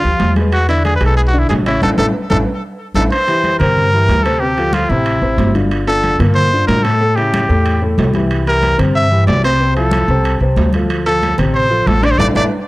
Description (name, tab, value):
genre	latin, salsa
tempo	185 BPM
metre	4/4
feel	straight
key	D minor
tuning	A4 = 442 Hz
part	clear trumpet	melody	0.0-12.4 s	E4 to E5	-16 LUFS	equal	analog delay
part	dark baby grand piano	accompaniment	0.0-12.5 s	A2 to D5	-19 LUFS	left 1 dB	none
part	upright bass	bass	0.0-12.5 s	G1 to A2	-16 LUFS	equal	tube saturation
part	congas	percussion	0.0-12.4 s	none	-21 LUFS	left 1 dB	none
part	timbales	percussion	0.2-12.4 s	none	-23 LUFS	right 4 dB	none
room	light reverb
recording	dry, gritty hardware recording, cassette tape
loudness	-11 LUFS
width	side -19 dB against mid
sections	0.0-3.1 A section; 3.1-12.7 B section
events	band accent 1.8-3.1, 12.2-12.7; drum fill 2.3-3.1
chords	0.0 G5/D; 0.5 E7; 1.8 A; 3.1 C9; 4.4 Dm11; 5.7 Gm11; 7.0 A7; 8.3 C7; 9.6 Fmaj7/C; 10.9 Dm7